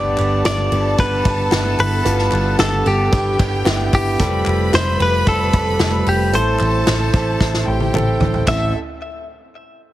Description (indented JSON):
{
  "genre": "piano-driven pop",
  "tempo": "112 BPM",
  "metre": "4/4",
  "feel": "straight",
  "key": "A minor",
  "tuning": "A4 = 440 Hz",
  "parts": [
    { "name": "direct-recorded clean electric guitar", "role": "melody", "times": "0.0-8.7 s", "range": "G4 to E5", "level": "-20 LUFS", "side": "left 1 dB", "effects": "tape echo" },
    { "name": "rich studio violin section", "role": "second line", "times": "0.0-8.7 s", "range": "C4 to B5", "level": "-26 LUFS", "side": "left 2 dB", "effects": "none" },
    { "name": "dark baby grand piano", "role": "accompaniment", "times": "0.0-8.7 s", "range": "A1 to C5", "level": "-22 LUFS", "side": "right 3 dB", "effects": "none" },
    { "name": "vintage muted picked electric bass", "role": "bass", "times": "0.0-8.7 s", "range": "F1 to A1", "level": "-20 LUFS", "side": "equal", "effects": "none" },
    { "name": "unplugged drum kit", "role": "drums", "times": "0.2-8.6 s", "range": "crash cymbal, hi-hat, kick drum, ride cymbal, snare drum, toms", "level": "-21 LUFS", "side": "equal", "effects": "none" },
    { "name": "group handclap", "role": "percussion", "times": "0.2-8.7 s", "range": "none", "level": "-30 LUFS", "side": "left 6 dB", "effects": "none" }
  ],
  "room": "light reverb, studio reverb",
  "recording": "heavily compressed radio sound, multiband compression",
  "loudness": "-14 LUFS",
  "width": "side -14 dB against mid",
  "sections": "0.0-8.5 A section; 8.5-9.9 B section",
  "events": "drum fill 7.4-8.5",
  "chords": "0.0 G; 4.2 Fadd9; 6.3 Am"
}